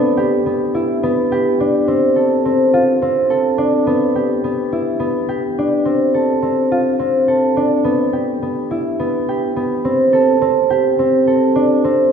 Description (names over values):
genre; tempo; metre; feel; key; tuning
contemporary instrumental, contemporary; 211 BPM (eighths); 7/8; straight; D dorian; A4 = 442 Hz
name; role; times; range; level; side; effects
concert harp; solo; 0.0-12.1 s; B3 to A4; -14 LUFS; equal; none
room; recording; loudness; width
wet church reverb, RT60 2.6 s; recorded in a church or concert hall; -14 LUFS; side -7 dB against mid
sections
0.0-5.9 A section; 5.9-12.1 B section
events
none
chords
0.0 Em7; 1.9 Dm7; 3.9 Em7; 5.9 Dm7; 7.9 Em; 9.9 C5